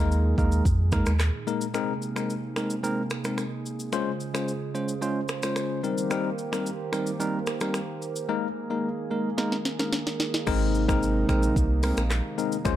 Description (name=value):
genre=afrobeats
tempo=110 BPM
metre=4/4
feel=straight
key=Ab major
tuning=A4 = 440 Hz
part: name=bell-like tine electric piano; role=accompaniment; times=0.0-12.8 s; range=G3 to C5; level=-28 LUFS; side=moving between left 9 dB and right 2 dB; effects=auto-pan
part: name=warm analog pad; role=sustained chords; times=0.0-12.8 s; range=Bb2 to C5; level=-33 LUFS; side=right 3 dB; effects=chorus
part: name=warm sub bass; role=bass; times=0.0-1.3, 10.5-12.8 s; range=Ab1 to F2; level=-24 LUFS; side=equal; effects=none
part: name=afro-pop drum kit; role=drums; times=0.1-12.8 s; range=crash cymbal, finger snaps, handclaps, hi-hat, kick drum, rim click, shaker, snare drum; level=-29 LUFS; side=equal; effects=none
room=light reverb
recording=dark, warm production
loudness=-24 LUFS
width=side -12 dB against mid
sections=0.0-1.7 A section; 1.7-10.5 B section; 10.5-12.8 A section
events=drum fill 9.4-10.5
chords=0.0 Ebsus4; 1.7 Abadd9; 3.9 Dbmaj7; 5.8 Cm7; 8.3 Ebsus4; 10.5 Abadd9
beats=0.11 0.65 1.20 | 1.74 2.29 2.83 3.38 | 3.93 4.47 5.02 5.56 | 6.11 6.65 7.20 7.74 | 8.29 8.84 9.38 9.93 | 10.47 11.02 11.56 12.11 | 12.65